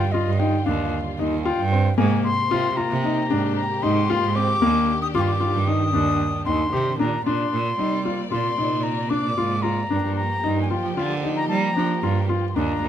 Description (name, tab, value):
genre	contemporary instrumental, chamber music in an uneven meter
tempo	114 BPM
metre	5/4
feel	straight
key	Eb major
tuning	A4 = 439 Hz
part	concert flute	melody	0.0-12.9 s	Eb5 to Eb6	-26 LUFS	left 2 dB	none
part	dark studio string section	sustained chords	0.0-12.9 s	C3 to D5	-30 LUFS	left 2 dB	none
part	bright cello	bass	0.0-12.9 s	Eb2 to G3	-24 LUFS	right 4 dB	none
part	clear grand piano	arpeggios	0.1-12.8 s	Bb3 to G4	-24 LUFS	left 3 dB	none
room	light reverb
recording	close, detailed microphones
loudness	-20 LUFS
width	side -10 dB against mid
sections	0.0-7.3 A section; 7.3-12.9 B section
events	none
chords	0.0 Ebmaj9; 2.0 Abmaj9; 4.6 Ebmaj7; 7.3 Bbadd9; 9.9 Gm7